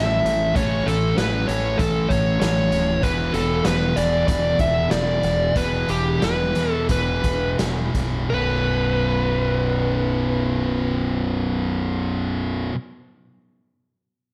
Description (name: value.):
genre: hard rock.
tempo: 82-97 BPM.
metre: 4/4.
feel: straight.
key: unclear.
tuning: A4 = 440 Hz.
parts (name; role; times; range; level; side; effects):
dark smooth lead guitar; melody; 0.0-12.0 s; G4 to E5; -26 LUFS; equal; overdrive, slapback echo.
scooped high-gain guitar; riff; 0.0-12.7 s; B1 to A3; -30 LUFS; equal; distortion.
sludgy distorted guitar; riff; 0.0-12.7 s; B1 to A3; -28 LUFS; equal; overdrive.
fuzz fingered electric bass; bass; 0.0-12.7 s; B0 to E2; -28 LUFS; equal; overdrive.
raw garage drum kit; drums; 0.3-8.1 s; hi-hat, kick drum, snare drum; -28 LUFS; equal; none.
room: light reverb, small room ambience.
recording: none.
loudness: -21 LUFS.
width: mono.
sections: 0.0-8.3 A section; 8.3-11.2 B section.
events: slowing down 3.0-8.3.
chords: 0.0 A; 3.0 E5; 8.3 B5.